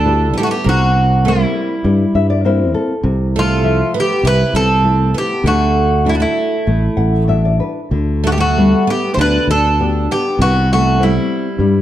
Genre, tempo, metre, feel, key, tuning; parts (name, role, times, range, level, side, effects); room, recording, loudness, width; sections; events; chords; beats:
fado-style ballad; 99 BPM; 4/4; rubato; G major; A4 = 440 Hz
Greek bouzouki; melody; 0.0-11.8 s; E4 to C5; -17 LUFS; right 1 dB
picked twelve-string acoustic guitar; second line; 0.0-11.8 s; G3 to E4; -21 LUFS; right 4 dB
nylon-string guitar; accompaniment; 0.0-11.8 s; C3 to F#5; -19 LUFS; left 3 dB
sustaining fretless electric bass; bass; 0.0-11.8 s; A1 to G2; -15 LUFS; equal; lush chorus
moderate recital hall reverb, RT60 1.3 s; dark, warm production; -12 LUFS; side -12 dB against mid
0.0-11.8 A section
nylon-string guitar fill 1.8-3.0, 6.7-7.9
0.0 G6; 0.7 C7; 3.0 Fmaj7/C; 5.4 Dadd9; 7.9 G/D; 10.4 Cmaj7
0.05 | 0.66 1.26 1.85 2.45 | 3.04 3.63 4.23 4.83 | 5.44 6.05 6.67 7.29 | 7.92 8.55 9.18 9.79 | 10.39 11.00 11.60